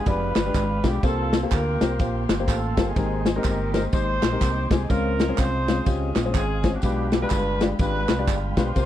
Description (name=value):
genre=uptempo gospel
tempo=124 BPM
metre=4/4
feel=swing 61% on 8ths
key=unclear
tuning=A4 = 440 Hz
part: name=mellow horn section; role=melody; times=0.0-8.9 s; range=B3 to C5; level=-28 LUFS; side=right 1 dB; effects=slapback echo
part: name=mellow tonewheel organ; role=sustained chords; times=0.0-8.9 s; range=Ab3 to C6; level=-32 LUFS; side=right 2 dB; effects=slow rotary speaker
part: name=warm grand piano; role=accompaniment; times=0.1-8.9 s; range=Ab2 to D5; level=-29 LUFS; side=left 4 dB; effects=none
part: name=fingered electric bass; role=bass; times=0.1-8.9 s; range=F1 to D2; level=-27 LUFS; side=equal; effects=none
part: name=warm soul drum kit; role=drums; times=0.1-8.9 s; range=kick drum, ride cymbal, snare drum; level=-23 LUFS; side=left 1 dB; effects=none
part: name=tambourine and handclaps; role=percussion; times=0.1-8.9 s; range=none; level=-36 LUFS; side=right 9 dB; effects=none
room=little or no reverb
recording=none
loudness=-20 LUFS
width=side -12 dB against mid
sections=0.0-8.9 A section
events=none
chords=0.0 G7b9; 1.0 C7sus4; 3.0 Abmaj9; 4.9 Dbmaj7; 6.8 G7b9